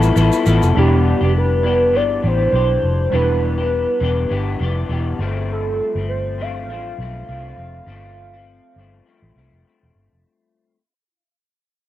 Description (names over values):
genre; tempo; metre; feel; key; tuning
indie pop, bedroom pop; 101 BPM; 4/4; swing 55% on 16ths; unclear; A4 = 438 Hz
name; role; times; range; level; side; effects
warbly nostalgic lead; melody; 0.0-9.7 s; G4 to F5; -21 LUFS; equal; analog chorus, cassette tape
electric guitar through a small old amp; accompaniment; 0.0-10.8 s; G2 to A4; -23 LUFS; left 6 dB; analog chorus, vibrato effect, cassette tape
warbly lo-fi synth keys; accompaniment; 0.0-5.2 s; G3 to D5; -27 LUFS; right 8 dB; chorus, cassette tape
vintage muted fingered electric bass; bass; 0.0-10.2 s; E1 to C2; -19 LUFS; equal; none
tube shaker; percussion; 0.0-0.7 s; none; -34 LUFS; right 9 dB; none
room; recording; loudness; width
little or no reverb; home recording on cassette; -15 LUFS; side -13 dB against mid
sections
0.7-10.2 A section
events
fade-out 0.7-10.2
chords
0.0 Fmaj9#11; 0.7 Em7; 5.2 G9sus4